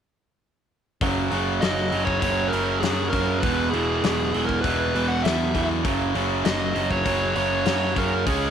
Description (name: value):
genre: classic rock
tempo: 99 BPM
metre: 4/4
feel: straight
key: unclear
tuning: A4 = 439 Hz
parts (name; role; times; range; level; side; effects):
- crunchy overdriven guitar; riff; 1.0-8.5 s; E2 to C#4; -26 LUFS; right 10 dB; none
- distorted electric guitar; riff; 1.0-8.5 s; E2 to C#4; -28 LUFS; left 10 dB; overdrive
- growling picked electric bass; bass; 1.0-8.5 s; E1 to F#2; -29 LUFS; equal; overdrive
- big rock drum kit; drums; 1.0-8.4 s; hi-hat, kick drum, snare drum; -28 LUFS; left 4 dB; none
- dark smooth lead guitar; melody; 1.6-8.5 s; G#4 to F#5; -26 LUFS; right 1 dB; overdrive
room: light reverb, small room ambience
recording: 1960s-style stereo with parts hard left and right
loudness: -20 LUFS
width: side -8 dB against mid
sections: 1.0-8.5 A section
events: none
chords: 1.0 F#5; 3.4 E; 5.8 F#5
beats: | 1.01 1.62 2.22 2.83 | 3.43 4.04 4.64 5.24 | 5.85 6.46 7.06 7.67 | 8.27